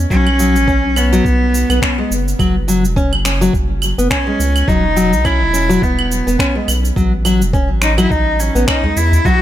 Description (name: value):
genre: organic downtempo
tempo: 105 BPM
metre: 4/4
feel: swing 56% on 16ths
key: unclear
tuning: A4 = 440 Hz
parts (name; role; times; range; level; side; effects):
- round analog bass; bass; 0.0-9.4 s; E1 to E2; -17 LUFS; equal; sidechain pumping
- clear cello; melody; 0.1-9.4 s; B3 to F#4; -17 LUFS; equal; vintage 12-bit sampler grit, digital delay
- nylon-string guitar; arpeggios; 0.1-9.4 s; F#3 to C#4; -18 LUFS; left 2 dB; digital delay
- electronic cabasa, claves and finger snaps; drums; 0.1-9.4 s; none; -21 LUFS; right 1 dB; overdrive
- electronic kick drum; drums; 0.1-9.4 s; none; -18 LUFS; equal; none
- udu; percussion; 8.8-9.2 s; none; -18 LUFS; left 1 dB; none
room: light reverb, studio reverb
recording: none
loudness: -12 LUFS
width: side -12 dB against mid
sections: 0.0-9.4 A section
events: none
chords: 0.1 Bsus2; 2.4 Esus2; 7.0 A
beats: | 0.11 0.68 1.25 1.82 | 2.39 2.96 3.54 4.11 | 4.68 5.25 5.82 6.39 | 6.96 7.54 8.11 8.68 | 9.25